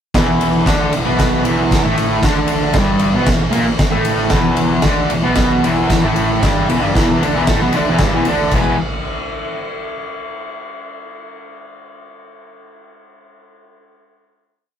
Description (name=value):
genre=garage rock duo or trio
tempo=115 BPM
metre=4/4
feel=straight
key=E minor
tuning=A4 = 440 Hz
part: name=raw garage guitar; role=riff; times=0.1-8.7 s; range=E2 to G#4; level=-16 LUFS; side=equal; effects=overdrive, harmonic tremolo
part: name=picked electric bass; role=bass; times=0.1-8.8 s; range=E1 to D2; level=-24 LUFS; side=equal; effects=overdrive
part: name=oversized low-tuned drum kit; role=drums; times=0.1-8.6 s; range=crash cymbal, kick drum, ride cymbal, snare drum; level=-18 LUFS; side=equal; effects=none
room=moderate booth ambience, RT60 0.3 s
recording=rough rehearsal-room recording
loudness=-13 LUFS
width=side -9 dB against mid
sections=0.2-8.5 riff; 8.5-10.6 final chord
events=none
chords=0.2 Em; 8.5 E